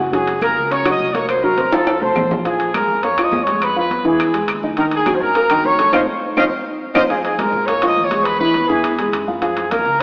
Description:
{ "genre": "latin, salsa", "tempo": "207 BPM", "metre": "4/4", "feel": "straight", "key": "Bb minor", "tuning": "A4 = 440 Hz", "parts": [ { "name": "dark upright piano", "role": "accompaniment", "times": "0.0-10.0 s", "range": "Eb3 to F#5", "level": "-22 LUFS", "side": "equal", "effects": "none" }, { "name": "upright bass", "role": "bass", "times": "0.0-10.0 s", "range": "F#1 to Bb2", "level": "-35 LUFS", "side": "equal", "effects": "none" }, { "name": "clear trumpet section", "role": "melody", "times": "0.1-10.0 s", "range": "Ab4 to Eb6", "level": "-20 LUFS", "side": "equal", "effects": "none" }, { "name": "congas", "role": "percussion", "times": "0.1-10.0 s", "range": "none", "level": "-33 LUFS", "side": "equal", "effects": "none" }, { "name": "timbales", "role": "percussion", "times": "0.1-10.0 s", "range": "none", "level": "-27 LUFS", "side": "equal", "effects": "none" }, { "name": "claves", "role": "percussion", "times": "0.4-7.0 s", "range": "none", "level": "-30 LUFS", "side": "equal", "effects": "none" } ], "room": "wet plate reverb, RT60 2.8 s", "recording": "heard from further back in the room, AM radio sound", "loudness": "-17 LUFS", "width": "mono", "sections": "0.0-7.1 A section; 7.1-10.0 A section", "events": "drum fill 1.7-2.5; band accent 5.9-7.1", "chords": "0.1 Gb; 1.3 Fadd11/C; 1.9 F; 2.5 Bbm7; 3.6 Fdim; 4.2 E; 4.8 Ebm7; 5.9 F5; 7.1 Bbm7; 8.3 Eadd9; 9.4 Gbmaj7", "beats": "| 0.13 0.42 0.71 1.00 | 1.29 1.58 1.87 2.16 | 2.45 2.74 3.03 3.32 | 3.61 3.90 4.19 4.48 | 4.77 5.06 5.36 5.64 | 5.93 6.23 6.52 6.81 | 7.10 7.39 7.68 7.97 | 8.26 8.55 8.84 9.13 | 9.42 9.71 10.00" }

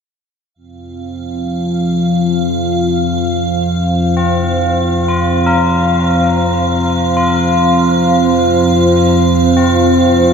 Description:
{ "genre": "dark ambient drone", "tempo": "49 BPM", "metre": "4/4", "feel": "straight", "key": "unclear", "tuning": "A4 = 437 Hz", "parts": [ { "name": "icy glass pad", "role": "texture", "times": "1.0-10.3 s", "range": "F5", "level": "-19 LUFS", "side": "right 1 dB", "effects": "chorus, built-in reverb, shimmer reverb" }, { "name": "dark analog pad", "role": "sustained chords", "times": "0.6-10.3 s", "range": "C4 to C5", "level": "-16 LUFS", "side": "right 2 dB", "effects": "wide subtle chorus, shimmer reverb" }, { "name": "analog drone", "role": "drone", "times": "0.9-10.3 s", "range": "F2 to F3", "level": "-15 LUFS", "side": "left 1 dB", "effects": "chorus" }, { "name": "tubular bells", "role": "arpeggios", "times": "4.2-10.3 s", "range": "C4 to Bb4", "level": "-18 LUFS", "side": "left 3 dB", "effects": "tape echo, shimmer reverb" } ], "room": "wet huge ambient reverb, RT60 7.8 s", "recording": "none", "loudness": "-11 LUFS", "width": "side -6 dB against mid", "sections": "0.6-10.3 A section", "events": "none", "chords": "0.6 F5", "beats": "| 0.57 1.80 3.03 4.25 | 5.47 6.69 7.89 9.09 | 10.29" }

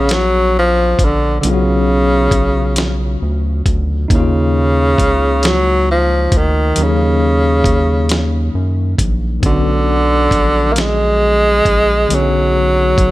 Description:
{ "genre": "slow six-eight R&B", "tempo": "45 BPM (dotted quarters)", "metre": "6/8", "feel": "straight", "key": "unclear", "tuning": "A4 = 440 Hz", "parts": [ { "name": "breathy tenor saxophone", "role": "melody", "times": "0.0-13.1 s", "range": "C#3 to A#3", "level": "-14 LUFS", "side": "equal", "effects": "none" }, { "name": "mellow tine electric piano", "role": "accompaniment", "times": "0.0-13.1 s", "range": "C#3 to F#5", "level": "-21 LUFS", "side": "left 1 dB", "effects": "medium stereo tremolo" }, { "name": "round analog bass", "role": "bass", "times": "0.0-13.1 s", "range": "A#1 to F#2", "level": "-16 LUFS", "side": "equal", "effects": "none" }, { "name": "dusty soul sampler-style drum kit", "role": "drums", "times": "0.1-13.1 s", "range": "hi-hat, kick drum, snare drum", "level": "-17 LUFS", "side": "equal", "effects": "none" } ], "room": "digital ambience", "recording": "none", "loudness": "-11 LUFS", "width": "side -17 dB against mid", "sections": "0.0-13.1 A section", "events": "none", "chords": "0.0 Bmadd9; 4.1 D#m7; 9.4 Bmadd9", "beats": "0.10 | 1.44 2.77 | 4.10 5.43 | 6.77 8.10 | 9.44 10.77 | 12.10" }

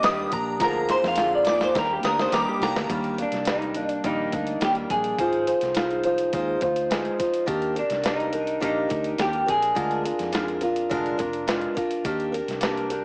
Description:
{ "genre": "indie pop, bedroom pop", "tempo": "105 BPM", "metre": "4/4", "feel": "straight", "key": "Eb major", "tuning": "A4 = 440 Hz", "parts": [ { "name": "electric guitar through a small old amp", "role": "melody", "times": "0.0-11.2 s", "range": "D4 to F5", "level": "-28 LUFS", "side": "equal", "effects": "lush chorus, cassette tape" }, { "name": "shimmering bell with halo", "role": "second line", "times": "0.0-2.8 s", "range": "Bb5 to Eb6", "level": "-30 LUFS", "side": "equal", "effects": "ensemble chorus, phaser, analog chorus, analog delay" }, { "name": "picked steel-string acoustic guitar", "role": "accompaniment", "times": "0.0-13.0 s", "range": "D3 to C5", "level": "-28 LUFS", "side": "equal", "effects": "subtle chorus, warbly pitch drift" }, { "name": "vintage muted fingered electric bass", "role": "bass", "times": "0.0-13.0 s", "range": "F1 to F2", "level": "-39 LUFS", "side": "equal", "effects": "none" }, { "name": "dusty soul sampler-style drum kit", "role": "drums", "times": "0.0-13.0 s", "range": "hi-hat, kick drum, snare drum", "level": "-32 LUFS", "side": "equal", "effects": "cassette tape" } ], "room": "light reverb, digital ambience", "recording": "home recording on cassette, small speaker sound", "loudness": "-25 LUFS", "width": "mono", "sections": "0.0-2.9 A section; 2.9-13.0 B section", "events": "clean electric guitar solo 0.0-2.9; drum fill 0.6-2.9", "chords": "0.0 Ebmaj7; 0.6 Bb7/D; 1.8 Ebmaj7; 5.2 Ab6; 7.5 Ebmaj7; 9.8 Bb7/D; 12.1 Ebmaj7", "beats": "0.04 | 0.61 1.18 1.75 2.33 | 2.90 3.47 4.04 4.61 | 5.19 5.76 6.33 6.90 | 7.47 8.05 8.62 9.19 | 9.76 10.33 10.91 11.48 | 12.05 12.62" }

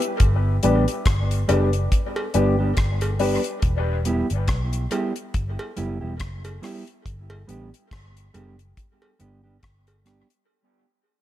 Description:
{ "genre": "dub reggae", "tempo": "70 BPM", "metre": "4/4", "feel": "swing 57% on 16ths", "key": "unclear", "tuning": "A4 = 440 Hz", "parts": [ { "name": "deep reggae drum kit", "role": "drums", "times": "0.0-10.5 s", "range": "hi-hat, kick drum, rim click", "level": "-24 LUFS", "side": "equal", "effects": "none" }, { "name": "vintage muted picked electric bass", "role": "bass", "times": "0.2-10.2 s", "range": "E1 to B1", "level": "-24 LUFS", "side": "equal", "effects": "none" }, { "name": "mellow electric guitar", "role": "accompaniment", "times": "0.6-10.3 s", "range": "G3 to G4", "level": "-27 LUFS", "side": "right 3 dB", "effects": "dub echo" }, { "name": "dark upright piano", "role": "stabs", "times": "0.6-3.4 s", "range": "D4 to B4", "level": "-27 LUFS", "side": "left 6 dB", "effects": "dub echo" }, { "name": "cowbell", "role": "percussion", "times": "1.5-10.0 s", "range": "none", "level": "-35 LUFS", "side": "right 2 dB", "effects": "dub echo" } ], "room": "light reverb, small room ambience", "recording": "echo-heavy mix", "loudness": "-20 LUFS", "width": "side -13 dB against mid", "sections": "0.0-10.5 A section", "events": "fade-out 0.0-10.5; break 3.6-10.5", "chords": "0.2 G; 3.6 Em; 7.1 G", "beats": "| 0.20 1.06 1.92 2.77 | 3.63 4.49 5.34 6.20 | 7.05 7.91 8.77 9.62" }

